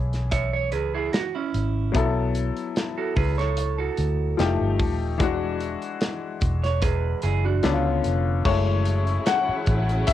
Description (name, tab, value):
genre	lush 1970s-style soul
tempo	74 BPM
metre	4/4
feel	swing 54% on 16ths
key	F# minor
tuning	A4 = 442 Hz
part	clear grand piano	accompaniment	0.0-10.1 s	D3 to F#5	-27 LUFS	left 7 dB	cassette tape, plate reverb
part	vintage muted fingered electric bass	bass	0.0-10.0 s	Eb1 to D2	-24 LUFS	equal	none
part	modern studio drum kit	drums	0.1-10.1 s	crash cymbal, hi-hat, kick drum, snare drum	-26 LUFS	equal	cassette tape
part	electric guitar through a small old amp	riff	0.3-7.8 s	C#4 to E5	-27 LUFS	right 8 dB	cassette tape
part	warm studio string section	sustained chords	8.4-10.1 s	C#3 to E4	-32 LUFS	right 1 dB	cassette tape
part	group handclap	percussion	9.3-10.1 s	none	-36 LUFS	right 10 dB	none
room	light reverb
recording	home recording on cassette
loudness	-21 LUFS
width	side -12 dB against mid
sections	0.0-8.5 A section; 8.5-10.1 B section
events	grand piano solo 8.5-10.1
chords	0.0 C#m7; 1.9 B7sus4; 4.4 F9; 5.2 E9; 7.6 C#7b9; 8.5 F#m7